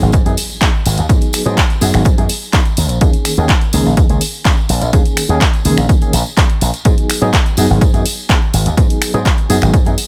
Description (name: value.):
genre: filtered disco house.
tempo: 125 BPM.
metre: 4/4.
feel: straight.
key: G# minor.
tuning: A4 = 442 Hz.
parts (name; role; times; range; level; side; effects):
bright reed electric piano; accompaniment; 0.0-10.0 s; D#3 to G#4; -21 LUFS; equal; fast tremolo, phaser, sidechain pumping.
slap bass with an envelope filter; bass; 0.0-9.9 s; G#1 to G#2; -17 LUFS; equal; sidechain pumping.
tambourine; percussion; 0.0-10.1 s; none; -29 LUFS; equal; sidechain pumping on perc.
impact; sound effects; 0.0-1.1 s; none; -34 LUFS; equal; none.
electronic kick drum; drums; 0.1-9.8 s; none; -15 LUFS; equal; none.
punchy analog drum machine; drums; 0.1-10.1 s; finger snaps, handclaps, hi-hat; -21 LUFS; equal; sidechain pumping on hats, sidechain pumping on cymbals.
room: digital ambience.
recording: none.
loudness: -13 LUFS.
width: mono.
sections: 0.0-10.1 A section.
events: impact 0.0-1.1.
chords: 0.0 G#m7; 2.8 D#7sus4; 6.9 G#m7.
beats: 0.14 0.62 | 1.10 1.58 2.06 2.54 | 3.02 3.50 3.98 4.46 | 4.94 5.42 5.90 6.38 | 6.86 7.34 7.82 8.30 | 8.78 9.26 9.74.